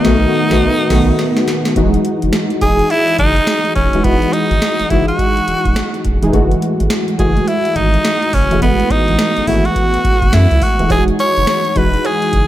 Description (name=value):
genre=R&B, new jack swing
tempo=105 BPM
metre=4/4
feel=swing 62% on 16ths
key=E major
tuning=A4 = 440 Hz
part: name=raspy tenor saxophone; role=melody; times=0.0-12.5 s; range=B3 to C#5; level=-16 LUFS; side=equal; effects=none
part: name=warm analog keys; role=accompaniment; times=0.0-12.5 s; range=D#3 to G#4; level=-16 LUFS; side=equal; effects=chorus
part: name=booming analog drum machine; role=drums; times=0.0-12.5 s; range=crash cymbal, hi-hat, kick drum, snare drum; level=-18 LUFS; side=equal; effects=gated reverb
part: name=round analog bass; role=bass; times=0.1-12.5 s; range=D#1 to F#2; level=-17 LUFS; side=equal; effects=none
part: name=cowbell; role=percussion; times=10.9-12.2 s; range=none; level=-29 LUFS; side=right 7 dB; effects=none
room=light reverb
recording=none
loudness=-12 LUFS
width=side -13 dB against mid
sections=0.0-1.8 A section; 1.8-12.5 B section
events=band accent 0.0-1.8; drum fill 0.6-1.8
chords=0.0 B7; 1.8 Emaj9; 6.3 F#m9; 10.9 Emaj9